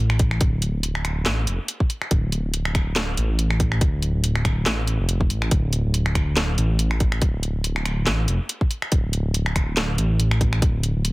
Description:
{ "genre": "deep dubstep", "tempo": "141 BPM", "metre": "4/4", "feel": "swing 55% on 16ths, half-time", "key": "D minor", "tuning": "A4 = 440 Hz", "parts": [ { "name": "dark detuned saw bass", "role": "bass", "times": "0.0-11.1 s", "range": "D1 to A1", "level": "-22 LUFS", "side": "equal", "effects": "none" }, { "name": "garage drum kit", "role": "drums", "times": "0.1-11.1 s", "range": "finger snaps, hi-hat, snare drum", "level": "-25 LUFS", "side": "equal", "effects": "none" }, { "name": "electronic kick drum", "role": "drums", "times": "0.2-10.7 s", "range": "none", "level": "-20 LUFS", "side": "equal", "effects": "none" } ], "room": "light reverb", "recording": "heavily compressed radio sound", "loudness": "-20 LUFS", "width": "side -21 dB against mid", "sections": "0.0-11.1 A section", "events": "none", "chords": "none" }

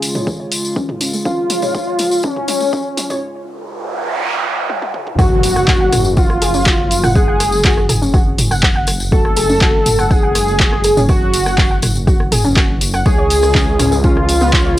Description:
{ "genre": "melodic techno", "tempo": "122 BPM", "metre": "4/4", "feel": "straight", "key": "F# harmonic minor", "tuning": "A4 = 440 Hz", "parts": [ { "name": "dark analog pad", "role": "sustained chords", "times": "0.0-5.1 s", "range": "C#3 to E#4", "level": "-28 LUFS", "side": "equal", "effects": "chorus, vintage 12-bit sampler grit, sidechain pumping, cassette tape" }, { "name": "punchy analog drum machine", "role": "drums", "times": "0.0-14.6 s", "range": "handclaps, hi-hat, rim click, toms", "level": "-19 LUFS", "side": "equal", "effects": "cassette tape" }, { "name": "tambourine", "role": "percussion", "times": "0.0-14.6 s", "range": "none", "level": "-24 LUFS", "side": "left 2 dB", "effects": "none" }, { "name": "warbly dusty pluck", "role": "arpeggios", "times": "0.1-14.7 s", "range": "G#3 to F#6", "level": "-22 LUFS", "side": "left 1 dB", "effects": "lush chorus, sidechain pumping, cassette tape, tape echo" }, { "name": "electronic kick drum", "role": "drums", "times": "0.3-14.6 s", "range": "none", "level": "-15 LUFS", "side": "equal", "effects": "overdrive, cassette tape" }, { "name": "wide unison lead", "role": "melody", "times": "1.3-14.8 s", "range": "C#4 to A4", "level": "-17 LUFS", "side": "equal", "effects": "sidechain pumping, cassette tape, analog delay" }, { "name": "noise sweep and impact", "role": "sound effects", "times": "3.5-7.2 s", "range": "none", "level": "-21 LUFS", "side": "right 2 dB", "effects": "none" }, { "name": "swelling detuned saw bass", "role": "bass", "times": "5.2-14.8 s", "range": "F#1 to C#2", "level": "-19 LUFS", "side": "equal", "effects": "sidechain pumping" } ], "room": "light reverb", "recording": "home recording on cassette, high-pass filter", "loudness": "-12 LUFS", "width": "side -14 dB against mid", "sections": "0.0-5.2 A section; 5.2-14.8 B section", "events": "build-up 0.0-5.2; drum fill 0.0-3.2, 4.7-5.2; filter sweep on analog synth lead 0.0-5.2; break 3.2-5.2; noise sweep 3.5-5.2; drop 5.2-14.8; impact 5.2-7.2", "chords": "0.0 C#; 5.2 F#m; 13.1 C#" }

